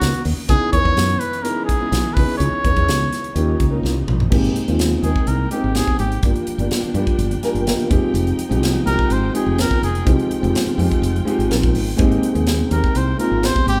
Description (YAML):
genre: electric jazz fusion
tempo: 125 BPM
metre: 4/4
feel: straight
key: C# dorian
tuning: A4 = 440 Hz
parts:
  - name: trumpet with cup mute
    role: melody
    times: 0.0-13.8 s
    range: F#4 to C#5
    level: -25 LUFS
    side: equal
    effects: none
  - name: dark concert grand piano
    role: accompaniment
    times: 0.0-13.8 s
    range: G3 to Ab5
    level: -24 LUFS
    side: equal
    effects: none
  - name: rich symphonic string section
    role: sustained chords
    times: 0.0-13.8 s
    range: C3 to G5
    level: -36 LUFS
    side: equal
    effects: none
  - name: woody fretless electric bass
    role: bass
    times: 0.0-13.8 s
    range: F1 to G2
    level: -23 LUFS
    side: equal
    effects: none
  - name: crisp fusion drum kit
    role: drums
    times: 0.0-13.8 s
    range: crash cymbal, hi-hat, kick drum, snare drum, toms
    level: -23 LUFS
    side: equal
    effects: none
room: moderate large studio reverb, RT60 1.2 s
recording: band playing live in one room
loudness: -18 LUFS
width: mono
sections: 0.0-4.3 A section; 4.3-13.8 B section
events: drum fill 3.8-4.3; muted trumpet solo 4.3-13.8; grand piano fill 7.2-8.1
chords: 0.5 C#m7; 3.4 D#7; 4.3 Abmaj9; 6.2 Gm7; 7.9 Fm9; 12.0 Abmaj9